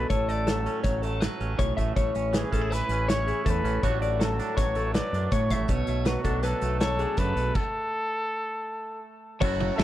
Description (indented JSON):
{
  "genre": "math rock and midwest emo",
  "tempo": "161 BPM",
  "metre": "5/4",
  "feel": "straight",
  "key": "unclear",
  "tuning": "A4 = 440 Hz",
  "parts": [
    { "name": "warm trumpet", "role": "melody", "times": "0.0-9.8 s", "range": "F#4 to D5", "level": "-31 LUFS", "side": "equal", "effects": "none" },
    { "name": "twangy electric guitar", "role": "accompaniment", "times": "0.0-9.8 s", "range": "F#2 to F#4", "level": "-33 LUFS", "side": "right 8 dB", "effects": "none" },
    { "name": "clean electric guitar", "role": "arpeggios", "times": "0.0-9.8 s", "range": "G#4 to E5", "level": "-30 LUFS", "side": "left 6 dB", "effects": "tape echo" },
    { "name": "growling fingered electric bass", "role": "bass", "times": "0.0-9.8 s", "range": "F#1 to A2", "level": "-29 LUFS", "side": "equal", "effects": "overdrive" },
    { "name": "loose indie drum kit", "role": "drums", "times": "0.1-9.8 s", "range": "crash cymbal, hi-hat, kick drum, ride cymbal, snare drum", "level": "-29 LUFS", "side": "equal", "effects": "none" },
    { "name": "overdriven semi-hollow guitar", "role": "riff", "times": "9.4-9.8 s", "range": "C#3 to C#4", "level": "-29 LUFS", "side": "right 4 dB", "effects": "phaser" }
  ],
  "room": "little or no reverb",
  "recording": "none",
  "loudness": "-24 LUFS",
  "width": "side -13 dB against mid",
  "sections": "0.0-9.4 A section",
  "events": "stop 7.6-9.4",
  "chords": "0.1 F#m/A; 2.0 Amaj7; 3.8 Dmaj7/A; 5.7 Bm7; 7.6 N.C."
}